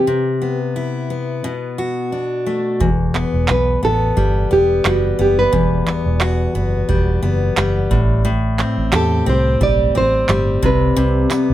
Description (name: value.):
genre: acoustic pop.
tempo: 88 BPM.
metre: 4/4.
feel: swing 55% on 16ths.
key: E minor.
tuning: A4 = 441 Hz.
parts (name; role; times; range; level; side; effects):
nylon-string guitar; melody; 0.0-11.5 s; F#4 to D5; -18 LUFS; right 2 dB; none.
picked steel-string acoustic guitar; accompaniment; 0.0-11.5 s; E2 to G4; -19 LUFS; left 3 dB; none.
vintage muted fingered electric bass; bass; 2.8-11.5 s; E1 to E2; -18 LUFS; right 1 dB; none.
booming analog drum machine; drums; 2.8-11.5 s; handclaps, kick drum, tambourine; -22 LUFS; right 2 dB; none.
room: little or no reverb.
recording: none.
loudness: -15 LUFS.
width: side -13 dB against mid.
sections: 0.0-2.8 A section; 2.8-11.5 B section.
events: none.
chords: 0.0 Cmaj7; 1.4 Bm7; 2.8 Emadd9; 7.9 Am7; 10.6 Cmaj7(no3).